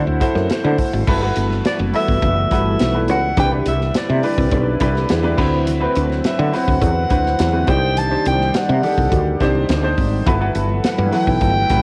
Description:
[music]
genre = polished 1980s jazz-funk pop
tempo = 104 BPM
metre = 4/4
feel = straight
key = G major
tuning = A4 = 442 Hz
[part]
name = mellow soprano saxophone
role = melody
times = 0.0-11.8 s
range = D5 to A5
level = -24 LUFS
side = equal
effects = none
[part]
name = warm grand piano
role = accompaniment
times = 0.0-11.8 s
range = F#3 to C5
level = -24 LUFS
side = equal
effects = subtle chorus, cassette tape
[part]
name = lush unison pad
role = sustained chords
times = 0.0-11.8 s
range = D3 to D5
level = -28 LUFS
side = equal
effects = chorus, cassette tape
[part]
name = woody fretless electric bass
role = bass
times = 0.0-11.8 s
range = F#1 to D3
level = -21 LUFS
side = equal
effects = analog chorus
[part]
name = modern studio drum kit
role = drums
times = 0.2-11.8 s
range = crash cymbal, hi-hat, kick drum, snare drum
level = -25 LUFS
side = equal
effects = none
[part]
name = congas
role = percussion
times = 0.2-11.5 s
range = none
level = -36 LUFS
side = equal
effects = none
[sound]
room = light reverb, small room ambience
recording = home recording on cassette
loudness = -17 LUFS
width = mono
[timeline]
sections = 0.0-1.1 A section; 1.1-11.8 B section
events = none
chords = 0.0 D7; 1.1 Gmaj13; 3.4 Cmaj9; 5.4 D13; 7.7 Cmadd9; 10.3 Gmaj13

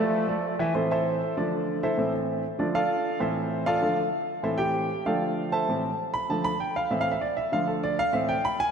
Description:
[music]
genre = latin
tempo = 195 BPM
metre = 4/4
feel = straight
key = A minor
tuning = A4 = 440 Hz
[part]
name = brilliant trombone section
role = melody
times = 0.0-0.6 s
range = F3 to A3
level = -31 LUFS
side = left 1 dB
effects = analog delay
[part]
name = clear grand piano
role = accompaniment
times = 0.0-8.7 s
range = A2 to B5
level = -24 LUFS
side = right 1 dB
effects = none
[sound]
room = wet lush hall reverb, RT60 3.2 s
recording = dreamy mix soaked in reverb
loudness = -24 LUFS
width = side -6 dB against mid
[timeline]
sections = 0.7-8.7 A section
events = grand piano solo 0.7-8.7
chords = 0.1 Dm; 0.7 Am; 1.4 Dm; 2.0 Am; 2.6 Dm; 3.2 Am; 3.8 Dm; 4.4 Am; 5.1 Dm; 5.7 Am; 6.3 Dm; 6.9 Am; 7.5 Dm; 8.1 Am

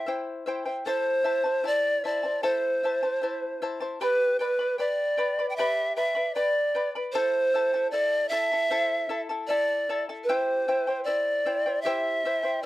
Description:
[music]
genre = andean folk, Andean ensemble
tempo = 76 BPM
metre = 4/4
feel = straight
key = A minor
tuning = A4 = 440 Hz
[part]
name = breathy bright polished pan flute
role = melody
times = 0.0-12.7 s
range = B4 to G5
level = -24 LUFS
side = right 1 dB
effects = slapback echo
[part]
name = charango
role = accompaniment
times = 0.0-12.7 s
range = E4 to B5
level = -31 LUFS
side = left 3 dB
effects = none
[sound]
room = little or no reverb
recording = dry, close 1970s-style studio recording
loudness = -24 LUFS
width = side -16 dB against mid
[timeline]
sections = 0.0-4.0 A section; 4.0-12.7 A section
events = none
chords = 0.0 C; 0.9 Am; 4.0 G; 7.1 Am; 10.3 C

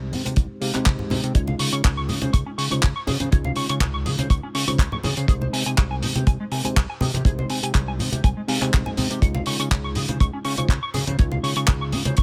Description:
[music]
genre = nu-disco, nu disco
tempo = 122 BPM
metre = 4/4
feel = swing 53% on 16ths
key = unclear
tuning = A4 = 440 Hz
[part]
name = mellow tine electric piano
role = accompaniment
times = 0.0-12.2 s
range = Ab3 to F5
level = -34 LUFS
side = equal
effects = low-pass filter, dub echo
[part]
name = fat analog bass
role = bass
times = 0.0-12.2 s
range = C2 to Db3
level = -29 LUFS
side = equal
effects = none
[part]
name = damped 70s drum kit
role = drums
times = 0.1-12.2 s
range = handclaps, hi-hat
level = -29 LUFS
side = equal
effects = none
[part]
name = congas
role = percussion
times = 0.1-12.1 s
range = none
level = -32 LUFS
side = equal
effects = none
[part]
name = kick drum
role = drums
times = 0.4-12.2 s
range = none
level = -20 LUFS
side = equal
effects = none
[part]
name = electric guitar with an envelope filter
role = riff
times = 1.4-12.2 s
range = Ab3 to Db6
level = -33 LUFS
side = equal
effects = lush chorus, dub echo
[sound]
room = studio reverb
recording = none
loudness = -22 LUFS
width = mono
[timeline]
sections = 0.0-12.2 A section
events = none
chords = 0.0 Abmaj7/C; 1.4 Dbmaj9; 5.3 Abmaj7/C; 9.2 Dbmaj9

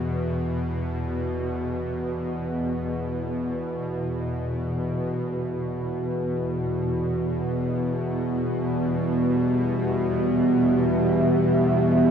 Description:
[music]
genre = dark ambient drone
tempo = free time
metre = none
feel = none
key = E minor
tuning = A4 = 441 Hz
[part]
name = bowed-like drone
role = drone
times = 0.0-12.1 s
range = E2 to B2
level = -24 LUFS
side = equal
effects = built-in reverb
[part]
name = deep dark ambient pad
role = sustained chords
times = 7.5-12.1 s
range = B3 to E5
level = -24 LUFS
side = right 1 dB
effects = chorus, built-in reverb
[sound]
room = wet lush hall reverb, RT60 2.8 s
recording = dreamy mix soaked in reverb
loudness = -23 LUFS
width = side -7 dB against mid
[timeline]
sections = 0.0-5.3 A section; 5.3-12.1 B section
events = none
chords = 0.0 E5; 5.3 Em

